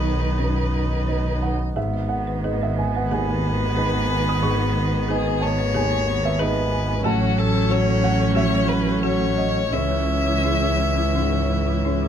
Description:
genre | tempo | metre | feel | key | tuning
neoclassical piano and strings | 90 BPM | 4/4 | uneven beats, rubato | unclear | A4 = 440 Hz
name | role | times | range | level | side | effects
clear violin | melody | 0.0-12.1 s | F#4 to E5 | -26 LUFS | left 4 dB | none
warm cello | second line | 0.0-12.1 s | D#3 to F#3 | -28 LUFS | right 5 dB | none
warm upright piano | accompaniment | 0.0-12.1 s | B1 to D#6 | -27 LUFS | right 2 dB | none
warm viola | accompaniment | 0.0-12.1 s | B3 to D#4 | -29 LUFS | right 4 dB | none
dark chamber string section | sustained chords | 0.0-12.1 s | D#3 to D#5 | -35 LUFS | right 1 dB | none
warm double bass | bass | 0.0-12.1 s | G#1 to C#2 | -23 LUFS | left 1 dB | none
folk marimba with hard mallets | arpeggios | 0.2-12.1 s | C#4 to B5 | -32 LUFS | left 7 dB | slapback echo
room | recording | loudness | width
light reverb | close, detailed microphones | -19 LUFS | side -8 dB against mid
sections
0.0-12.1 A section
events
none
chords
0.0 B; 1.8 G#m; 7.1 F#m/A; 9.7 C#m

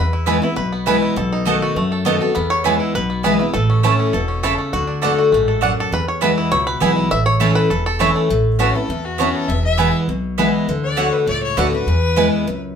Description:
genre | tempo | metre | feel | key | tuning
bluegrass | 202 BPM | 4/4 | straight | A major | A4 = 439 Hz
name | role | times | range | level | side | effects
bluegrass banjo | melody | 0.0-8.3 s | A3 to E5 | -22 LUFS | equal | none
picked steel-string acoustic guitar | accompaniment | 0.0-12.8 s | E2 to F#4 | -19 LUFS | left 2 dB | none
upright bass | bass | 0.0-12.7 s | E1 to F#2 | -21 LUFS | right 1 dB | none
mandolin | stabs | 0.3-12.3 s | A3 to A5 | -19 LUFS | right 6 dB | none
rich fiddle | second line | 8.6-12.6 s | F#4 to E5 | -23 LUFS | left 5 dB | none
room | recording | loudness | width
wet studio ambience, RT60 0.5 s | band playing live in one room | -15 LUFS | side -7 dB against mid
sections
0.0-8.3 A section; 8.3-12.8 A section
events
five-string banjo solo 0.0-8.3; fiddle solo 8.3-12.8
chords
0.0 E; 1.2 B7; 2.4 E; 3.5 A; 4.7 D; 5.9 E; 7.1 A; 8.3 Aadd9; 9.5 E; 10.7 D; 11.9 E

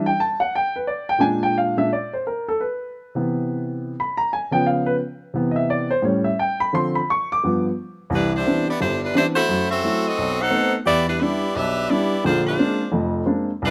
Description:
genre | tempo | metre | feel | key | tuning
jazz | 174 BPM | 4/4 | swing 63% on 8ths | C major | A4 = 440 Hz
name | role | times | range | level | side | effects
warm baby grand piano | accompaniment | 0.0-13.7 s | F1 to D6 | -23 LUFS | equal | none
edgy saxophone section | melody | 8.1-13.7 s | G3 to F#5 | -23 LUFS | equal | none
room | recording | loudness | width
light reverb | close, detailed microphones | -22 LUFS | mono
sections
0.0-8.1 A section; 8.1-13.7 B section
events
grand piano solo 0.0-8.1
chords
0.0 Em7 (rootless); 1.2 Bb7; 2.6 Cmaj7; 4.0 Db7; 5.3 Cmaj7; 6.0 A7; 6.7 Dm7; 7.4 G7; 8.1 Cmaj9; 9.5 F#m7b5; 10.2 B7b9; 10.9 Em7; 12.2 Bb9

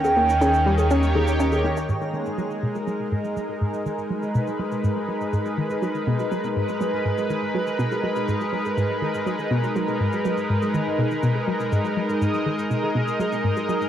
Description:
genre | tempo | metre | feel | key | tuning
ambient, sequencer-driven space music | 122 BPM | 4/4 | straight | G# minor | A4 = 440 Hz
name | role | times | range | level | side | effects
mellow horn-like synth lead | melody | 0.0-1.4 s | G5 | -22 LUFS | right 2 dB | lush chorus, tape echo
lush unison pad | sustained chords | 0.0-13.9 s | D#3 to D#5 | -24 LUFS | equal | chorus, cassette tape
hollow square pluck | riff | 0.0-13.8 s | G#2 to C#4 | -26 LUFS | equal | chorus, phaser, cassette tape, tape echo
warm sub bass | bass | 0.0-1.9 s | D#2 | -23 LUFS | equal | none
bongos and shaker | percussion | 0.0-13.9 s | none | -32 LUFS | equal | overdrive, cassette tape, tape echo
twinkling granular texture | texture | 0.0-1.9 s | A#3 to A#5 | -36 LUFS | right 1 dB | built-in reverb, cassette tape
room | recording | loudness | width
wet small room reverb, RT60 0.5 s | home recording on cassette | -21 LUFS | side -10 dB against mid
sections
0.0-1.9 A section; 1.9-13.9 B section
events
fade-in on drum 1.9-13.9; filter sweep on synth arpeggio sound 1.9-13.9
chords
0.0 D#7; 1.9 G#madd9

